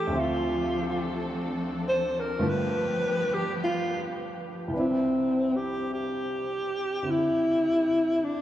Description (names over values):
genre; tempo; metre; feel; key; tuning
jazz ballad; 52 BPM; 4/4; swing 68% on 8ths; C major; A4 = 440 Hz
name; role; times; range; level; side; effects
breathy alto saxophone; melody; 0.0-8.4 s; C4 to C5; -26 LUFS; equal; none
dark baby grand piano; accompaniment; 0.0-8.4 s; C2 to E5; -32 LUFS; right 1 dB; none
dark symphonic string section; sustained chords; 0.0-4.7 s; F3 to A4; -35 LUFS; left 1 dB; none
room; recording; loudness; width
wet cathedral reverb, RT60 5.7 s; in a vast, echoing space, small room ambience; -25 LUFS; side -12 dB against mid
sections
0.0-4.7 A section; 4.7-8.4 B section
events
alto saxophone solo 0.0-4.7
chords
0.1 Dm7; 2.4 G7; 4.7 Cmaj7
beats
| 0.11 1.25 2.39 3.56 | 4.72 5.88 7.03 8.18